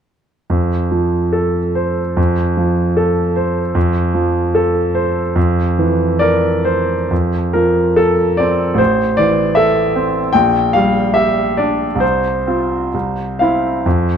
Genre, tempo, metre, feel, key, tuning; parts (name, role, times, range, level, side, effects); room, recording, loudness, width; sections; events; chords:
classical, romantic character piece for solo piano; 61-79 BPM; 2/4; rubato; F major; A4 = 440 Hz
bright grand piano; solo; 0.5-14.2 s; A1 to G5; -13 LUFS; equal
moderate large studio reverb, RT60 1.4 s; dark, warm production; -13 LUFS; side -8 dB against mid
0.5-7.1 A section; 7.1-14.2 B section
0.5 F; 5.4 C7/F; 7.1 F5; 8.8 Am; 10.3 Gm/Bb; 12.0 F5/C; 12.9 C